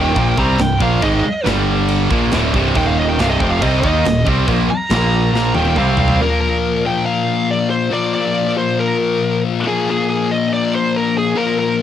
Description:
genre	heavy metal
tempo	139 BPM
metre	4/4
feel	straight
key	unclear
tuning	A4 = 440 Hz
part	high-gain lead guitar	melody	0.0-11.8 s	Ab4 to Bb5	-20 LUFS	right 1 dB	distortion, cassette tape, tape echo
part	distorted electric guitar	riff	0.0-6.2 s	C2 to Eb4	-24 LUFS	equal	none
part	high-gain distorted guitar	riff	0.0-11.8 s	C2 to Eb4	-19 LUFS	left 8 dB	distortion, cassette tape
part	tight distorted guitar	riff	0.0-6.2 s	C2 to Eb4	-20 LUFS	right 10 dB	distortion, cassette tape
part	growling picked electric bass	bass	0.0-6.2 s	C1 to Eb2	-18 LUFS	equal	overdrive
part	tight metal drum kit	drums	0.2-6.2 s	crash cymbal, kick drum, snare drum, toms	-22 LUFS	equal	none
room	light reverb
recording	home recording on cassette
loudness	-14 LUFS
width	side -10 dB against mid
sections	0.0-6.2 A section; 6.2-11.8 B section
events	lead electric guitar solo 0.0-6.2; drum fill 5.3-6.2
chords	0.0 Cm; 1.5 G5; 2.1 C5; 2.8 Eb5; 4.9 Bb5; 5.3 Eb5; 5.8 C5; 6.2 Bb5

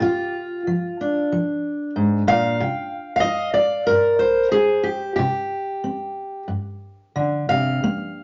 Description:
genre	folk, solo fingerstyle acoustic guitar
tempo	92 BPM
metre	4/4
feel	rubato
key	unclear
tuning	A4 = 440 Hz
part	fingerpicked steel-string acoustic guitar	solo	0.0-8.2 s	G2 to G5	-22 LUFS	equal	none
room	moderate studio reverb, RT60 0.7 s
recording	nothing above 7.5 kHz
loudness	-21 LUFS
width	mono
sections	0.0-8.2 A section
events	none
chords	0.0 Bb; 2.6 Cm

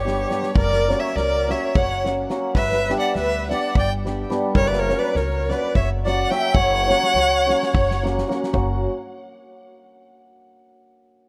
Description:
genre	balkan folk, Balkan wedding band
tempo	211 BPM (eighths)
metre	7/8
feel	straight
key	F# phrygian dominant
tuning	A4 = 439 Hz
part	clear violin	melody	0.0-8.0 s	C#5 to G5	-26 LUFS	equal	tape echo
part	musette accordion	second line	0.0-8.0 s	G4 to E5	-27 LUFS	equal	none
part	hammered dulcimer	accompaniment	0.0-8.9 s	F#3 to G4	-28 LUFS	equal	none
part	upright bass	bass	0.0-8.9 s	F#1 to D2	-28 LUFS	equal	none
part	loose indie drum kit	percussion	0.1-8.9 s	kick drum, snare drum	-27 LUFS	equal	none
room	light reverb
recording	rough home demo mix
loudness	-21 LUFS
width	mono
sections	0.0-8.5 A section; 8.5-10.5 B section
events	none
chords	0.0 G; 0.6 F#; 2.6 G; 4.6 F#

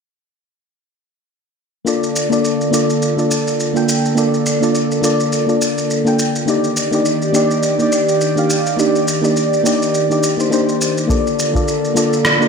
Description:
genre	sunset chillout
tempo	104 BPM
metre	4/4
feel	swing 57% on 16ths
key	Bb major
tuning	A4 = 440 Hz
part	mellow FM electric piano	accompaniment	1.8-12.5 s	Bb3 to G5	-16 LUFS	moving between left 4 dB and right 4 dB	chorus, auto-pan, low-pass filter, digital delay
part	airy breathy pad	sustained chords	2.0-12.5 s	D3 to D5	-19 LUFS	right 1 dB	chorus
part	electronic shaker and rim click	drums	1.9-12.5 s	none	-22 LUFS	equal	gated reverb
part	electronic kick drum	drums	11.1-11.6 s	none	-18 LUFS	equal	overdrive
room	wet plate reverb, RT60 1.4 s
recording	bright 1980s-style digital production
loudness	-14 LUFS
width	side -5 dB against mid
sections	1.9-12.5 A section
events	none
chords	1.9 Bbmaj7; 6.5 Ebmaj7; 11.1 Bbmaj7

